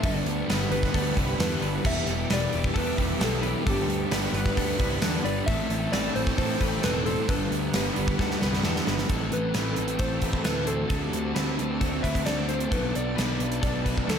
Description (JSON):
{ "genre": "rock, shoegaze and dream pop", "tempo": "132 BPM", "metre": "4/4", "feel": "straight", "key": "unclear", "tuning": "A4 = 440 Hz", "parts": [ { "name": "soft struck synth lead", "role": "melody", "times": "0.0-14.2 s", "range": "G4 to E5", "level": "-33 LUFS", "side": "left 1 dB", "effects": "chorus, slapback echo" }, { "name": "soft string machine", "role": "sustained chords", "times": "0.0-14.2 s", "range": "C4 to D6", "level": "-36 LUFS", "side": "equal", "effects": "ensemble chorus" }, { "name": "direct-recorded clean electric guitar", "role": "arpeggios", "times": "0.0-14.2 s", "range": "A4 to C5", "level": "-38 LUFS", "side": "left 10 dB", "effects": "wide subtle chorus, slapback echo" }, { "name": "raw garage guitar", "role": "riff", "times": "0.0-14.2 s", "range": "G2 to F#4", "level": "-31 LUFS", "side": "right 12 dB", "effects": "overdrive, reverse reverb" }, { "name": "thick fuzz guitar", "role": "riff", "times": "0.0-14.2 s", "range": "E2 to D4", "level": "-32 LUFS", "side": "left 10 dB", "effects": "distortion, lush chorus" }, { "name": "fuzz picked electric bass", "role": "bass", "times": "0.0-14.2 s", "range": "E1 to A2", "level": "-31 LUFS", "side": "equal", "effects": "overdrive" }, { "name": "gated 80s drum kit", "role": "drums", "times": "0.0-14.2 s", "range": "crash cymbal, hi-hat, kick drum, snare drum", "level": "-28 LUFS", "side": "right 1 dB", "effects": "none" } ], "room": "light reverb, small room ambience", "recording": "none", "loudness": "-24 LUFS", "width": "side -7 dB against mid", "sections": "0.0-9.1 A section; 9.1-14.2 B section", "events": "drum fill 8.2-9.1", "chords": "0.0 Gmaj7; 1.8 Em7; 3.7 Gmaj7; 5.5 Am7; 7.3 Gmaj7; 9.1 Am7; 10.9 D7sus4; 12.7 Bm7" }